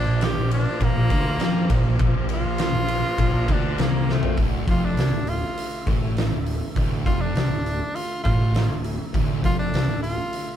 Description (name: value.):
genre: stoner and doom metal.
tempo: 101 BPM.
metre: 4/4.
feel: straight.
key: D minor.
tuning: A4 = 440 Hz.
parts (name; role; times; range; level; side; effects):
edgy tenor saxophone; melody; 0.0-10.6 s; A3 to G4; -28 LUFS; right 1 dB; none.
tonewheel organ; sustained chords; 0.0-10.6 s; Bb2 to E5; -35 LUFS; equal; slow rotary speaker, chorus vibrato.
fuzz picked electric bass; bass; 0.0-10.2 s; D1 to F2; -28 LUFS; equal; overdrive.
thick fuzz guitar; riff; 0.1-10.1 s; D2 to F3; -26 LUFS; left 5 dB; distortion.
thick fuzz guitar; riff; 0.1-10.1 s; D2 to F3; -27 LUFS; right 6 dB; distortion.
oversized low-tuned drum kit; drums; 0.2-10.5 s; hi-hat, kick drum, ride cymbal, snare drum, toms; -24 LUFS; equal; none.
room: light reverb.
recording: band playing live in one room.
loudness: -20 LUFS.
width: side -10 dB against mid.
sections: 0.0-4.4 A section; 4.4-10.6 B section.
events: tenor saxophone solo 0.0-4.4; drum fill 4.1.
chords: 0.0 Bb5; 4.4 Dm.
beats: 0.22 0.81 1.41 | 2.00 2.60 3.19 3.79 | 4.38 4.98 5.58 6.17 | 6.77 7.36 7.96 8.55 | 9.15 9.75 10.34.